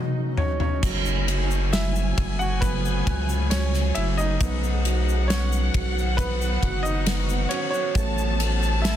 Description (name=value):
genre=pop ballad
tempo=67 BPM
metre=4/4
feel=straight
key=unclear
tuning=A4 = 440 Hz
part: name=clear grand piano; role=melody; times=0.0-9.0 s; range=B3 to F#5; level=-30 LUFS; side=right 2 dB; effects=digital delay
part: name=dark upright piano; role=accompaniment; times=0.0-9.0 s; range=F#3 to F#4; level=-33 LUFS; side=right 8 dB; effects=none
part: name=shimmering ambient pad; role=sustained chords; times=0.0-9.0 s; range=C#3 to G#4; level=-33 LUFS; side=equal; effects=chorus, built-in reverb
part: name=loose indie drum kit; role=drums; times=0.4-9.0 s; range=crash cymbal, kick drum, ride cymbal, snare drum, toms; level=-26 LUFS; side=left 1 dB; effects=none
part: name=dark symphonic violin section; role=second line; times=0.8-9.0 s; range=F#5 to A5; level=-33 LUFS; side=left 2 dB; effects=digital delay
part: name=saturated sub bass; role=bass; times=0.8-9.0 s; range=F#1 to C#2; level=-24 LUFS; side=equal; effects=none
part: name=egg shaker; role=percussion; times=0.8-9.0 s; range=none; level=-41 LUFS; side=left 10 dB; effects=none
room=studio reverb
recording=dense, heavily limited modern master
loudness=-21 LUFS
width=side -11 dB against mid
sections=0.8-9.0 A section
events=break 0.0-0.8; drum fill 0.0-0.8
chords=0.0 Badd9; 0.8 F#m; 4.4 B; 7.9 A